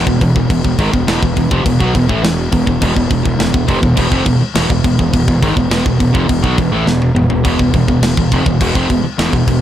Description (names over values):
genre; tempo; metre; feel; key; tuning
heavy metal; 104 BPM; 4/4; straight; unclear; A4 = 440 Hz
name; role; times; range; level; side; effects
sludgy distorted guitar; riff; 0.0-9.6 s; E2 to F#3; -14 LUFS; equal; overdrive
fuzz fingered electric bass; bass; 0.0-9.6 s; E1 to B1; -18 LUFS; equal; overdrive
tight metal drum kit; drums; 0.1-9.6 s; crash cymbal, kick drum, snare drum, toms; -17 LUFS; equal; none
room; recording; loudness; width
small room ambience; none; -11 LUFS; side -11 dB against mid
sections
0.0-9.6 A section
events
drum fill 6.9-7.5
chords
0.0 E5